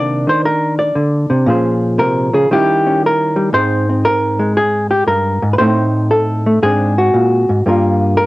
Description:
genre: solo jazz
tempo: 116 BPM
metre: 4/4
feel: swing 67% on 8ths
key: unclear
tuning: A4 = 441 Hz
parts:
  - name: hollow-body jazz guitar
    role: solo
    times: 0.0-8.3 s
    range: G2 to D5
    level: -12 LUFS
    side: equal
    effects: cassette tape
room: light reverb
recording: home recording on cassette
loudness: -12 LUFS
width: side -19 dB against mid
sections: 0.0-8.3 A section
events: none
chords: 0.0 Cm9; 1.5 Bbm9; 2.5 Eb7b9; 3.5 Abmaj9; 5.6 Adim; 6.6 Ab7#11; 7.6 Gm7

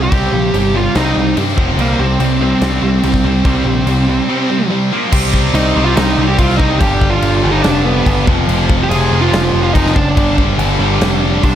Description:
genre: hard rock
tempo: 143 BPM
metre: 4/4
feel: straight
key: unclear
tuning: A4 = 438 Hz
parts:
  - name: high-gain lead guitar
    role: melody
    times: 0.0-11.6 s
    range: Bb3 to Ab4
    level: -18 LUFS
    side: right 3 dB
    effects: distortion, tape echo
  - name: heavy high-gain guitar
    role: riff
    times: 0.0-11.6 s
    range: F2 to C4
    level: -22 LUFS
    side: left 1 dB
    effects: distortion
  - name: tight distorted guitar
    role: riff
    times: 0.0-11.6 s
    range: F2 to C4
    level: -20 LUFS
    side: left 10 dB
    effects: distortion
  - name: tight distorted guitar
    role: riff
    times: 0.0-11.6 s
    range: F2 to C4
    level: -21 LUFS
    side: right 13 dB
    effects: distortion
  - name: growling picked electric bass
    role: bass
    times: 0.0-11.6 s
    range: F1 to G2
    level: -16 LUFS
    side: equal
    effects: overdrive
  - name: big rock drum kit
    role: drums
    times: 0.1-11.5 s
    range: crash cymbal, kick drum, snare drum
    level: -18 LUFS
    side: equal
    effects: none
room: light reverb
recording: none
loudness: -11 LUFS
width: side -10 dB against mid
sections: 0.0-5.1 A section; 5.1-11.6 B section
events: none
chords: 0.0 Cm; 1.6 F5; 1.8 C5; 4.9 Bb5; 5.1 C5; 6.8 G; 8.3 F5; 10.2 G5

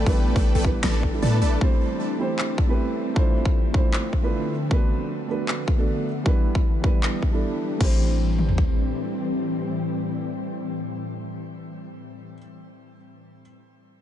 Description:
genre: future bass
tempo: 155 BPM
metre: 4/4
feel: half-time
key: A minor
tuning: A4 = 441 Hz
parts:
  - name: felt-muted upright piano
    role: accompaniment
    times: 0.0-13.4 s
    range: G3 to C5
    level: -29 LUFS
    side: right 4 dB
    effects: sidechain pumping, digital delay
  - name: ethereal airy pad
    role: sustained chords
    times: 0.0-11.7 s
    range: A2 to D4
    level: -29 LUFS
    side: left 2 dB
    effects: ensemble chorus, built-in reverb, vintage 12-bit sampler grit, sidechain pumping
  - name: supersaw stab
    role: riff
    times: 0.0-1.6 s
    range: A3 to A5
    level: -30 LUFS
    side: equal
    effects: sidechain pumping, digital delay
  - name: warm 808-style bass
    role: bass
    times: 0.0-1.6, 7.8-8.9 s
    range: A1 to A2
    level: -23 LUFS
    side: equal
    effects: sidechain pumping
  - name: big-room dance drum kit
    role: drums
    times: 0.1-8.7 s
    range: kick drum, toms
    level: -21 LUFS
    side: equal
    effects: overdrive, small room ambience
  - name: big-room dance drum kit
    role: drums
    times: 0.8-7.9 s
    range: crash cymbal, handclaps, snare drum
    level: -33 LUFS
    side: left 1 dB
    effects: overdrive, small room ambience
room: little or no reverb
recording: nothing above 10.7 kHz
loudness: -21 LUFS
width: side -11 dB against mid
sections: 0.0-7.8 A section; 7.8-10.9 B section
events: none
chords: 0.0 Em7/A; 1.6 Am7; 3.2 Dm9; 4.5 Bm7; 6.1 Em7; 7.8 Am7

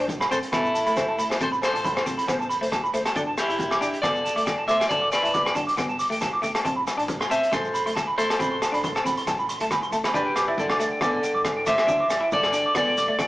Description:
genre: highlife guitar band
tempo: 137 BPM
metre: 4/4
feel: swing 54% on 16ths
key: G major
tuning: A4 = 441 Hz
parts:
  - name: electric guitar at the edge of break-up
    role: accompaniment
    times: 0.0-13.3 s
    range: A3 to E4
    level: -31 LUFS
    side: left 1 dB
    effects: none
  - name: electric guitar through a small old amp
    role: arpeggios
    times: 0.0-13.3 s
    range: C5 to D6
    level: -26 LUFS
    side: right 1 dB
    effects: none
  - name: hollow-body short-scale fingered electric bass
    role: bass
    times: 0.0-13.3 s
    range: E1 to G2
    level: -44 LUFS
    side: equal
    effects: none
  - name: crunchy breakbeat drum kit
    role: drums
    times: 0.1-13.3 s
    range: hi-hat, kick drum, rim click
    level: -29 LUFS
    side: equal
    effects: none
  - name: congas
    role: percussion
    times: 0.1-13.3 s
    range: none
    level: -40 LUFS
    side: equal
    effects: none
  - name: shekere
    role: percussion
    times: 0.1-13.3 s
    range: none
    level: -41 LUFS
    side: right 2 dB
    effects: none
  - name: agogo bells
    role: percussion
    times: 0.2-13.3 s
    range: none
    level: -35 LUFS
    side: left 3 dB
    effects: none
  - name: electric guitar at the edge of break-up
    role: melody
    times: 0.3-13.3 s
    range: D4 to E5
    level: -24 LUFS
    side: equal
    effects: none
room: moderate stone room reverb, RT60 1.0 s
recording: band playing live in one room, small speaker sound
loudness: -21 LUFS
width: side -17 dB against mid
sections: 0.0-10.1 A section; 10.1-13.3 B section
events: drum fill 9.6-10.1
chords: 0.0 Amadd9; 3.2 Gsus2; 6.7 Amadd9; 10.1 Gsus2

